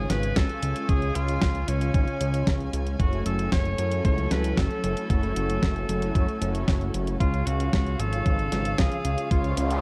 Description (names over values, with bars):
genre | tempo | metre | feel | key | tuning
italo disco | 114 BPM | 4/4 | straight | F# minor | A4 = 436 Hz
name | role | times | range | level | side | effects
bright alto saxophone | melody | 0.0-9.8 s | C#4 to C#5 | -34 LUFS | equal | shimmer reverb
dark chamber string section | sustained chords | 0.0-9.8 s | F#3 to G#5 | -37 LUFS | equal | shimmer reverb
mellow synth brass | stabs | 0.0-9.8 s | C#3 to C#5 | -35 LUFS | equal | chorus, shimmer reverb
fat analog bass | bass | 0.0-9.8 s | F#1 to F#2 | -30 LUFS | equal | none
clean 12-bit digital drum machine | drums | 0.1-9.8 s | hi-hat, snare drum | -33 LUFS | equal | none
electronic kick drum | drums | 0.4-9.4 s | none | -27 LUFS | equal | none
noise sweep | sound effects | 9.4-9.8 s | none | -34 LUFS | equal | none
room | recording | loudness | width
light reverb | dark, warm production | -25 LUFS | mono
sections
0.0-9.8 A section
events
noise sweep 9.4-9.8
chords
0.0 C#; 3.0 F#m7; 7.2 C#